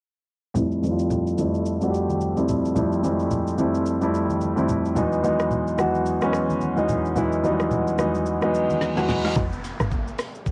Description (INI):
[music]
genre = amapiano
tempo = 109 BPM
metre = 4/4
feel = swing 58% on 16ths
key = unclear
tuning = A4 = 439 Hz
[part]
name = warm concert grand piano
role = accompaniment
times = 0.5-9.4 s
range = E2 to G4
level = -23 LUFS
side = equal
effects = low-pass filter, cassette tape
[part]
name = smooth R&B drum kit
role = drums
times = 0.6-10.5 s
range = hi-hat, kick drum, rim click, shaker, snare drum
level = -33 LUFS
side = equal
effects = cassette tape
[part]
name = congas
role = percussion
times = 0.6-9.2 s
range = none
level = -34 LUFS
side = equal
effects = none
[part]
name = reverse cymbal and downlifter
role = sound effects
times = 8.5-10.5 s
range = none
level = -37 LUFS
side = equal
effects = none
[part]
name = woody log drum bass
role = bass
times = 9.4-10.1 s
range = F1 to G1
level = -29 LUFS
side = equal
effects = none
[sound]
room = moderate small room reverb, RT60 0.5 s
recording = home recording on cassette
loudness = -23 LUFS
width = mono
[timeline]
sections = 0.6-9.4 A section; 9.4-10.5 B section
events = filter sweep on grand piano 0.6-9.4; reverse cymbal 8.5-9.4; drum fill 8.8-9.4; drop 9.4-10.5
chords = 0.6 Fmaj9; 5.0 Emaj9; 9.4 Fsus2